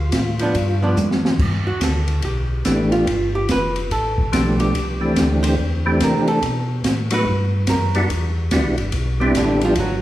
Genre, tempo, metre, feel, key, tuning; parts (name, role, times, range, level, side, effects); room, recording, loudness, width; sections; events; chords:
soul jazz organ trio; 143 BPM; 4/4; swing 64% on 8ths; G major; A4 = 440 Hz
percussive tonewheel organ; melody; 0.0-9.7 s; E3 to G4; -21 LUFS; equal; slow rotary speaker, chorus vibrato
mellow tonewheel organ; bass; 0.0-10.0 s; F1 to C3; -22 LUFS; equal; slow rotary speaker
open jazz drum kit; drums; 0.1-9.9 s; crash cymbal, hi-hat, kick drum, ride cymbal, snare drum, toms; -23 LUFS; equal
archtop guitar, miked and amplified; accompaniment; 0.4-10.0 s; C3 to C5; -23 LUFS; right 2 dB
wet recital hall reverb, RT60 1.6 s; recorded in a church or concert hall; -17 LUFS; side -14 dB against mid
0.0-1.4 A section; 1.4-10.0 B section
drum fill 1.0-1.4; hollow-body jazz guitar solo 1.4-10.0
0.0 Dm; 0.6 G7; 1.4 G69; 3.1 G7; 4.7 C6; 6.4 B7(no3); 8.1 Em7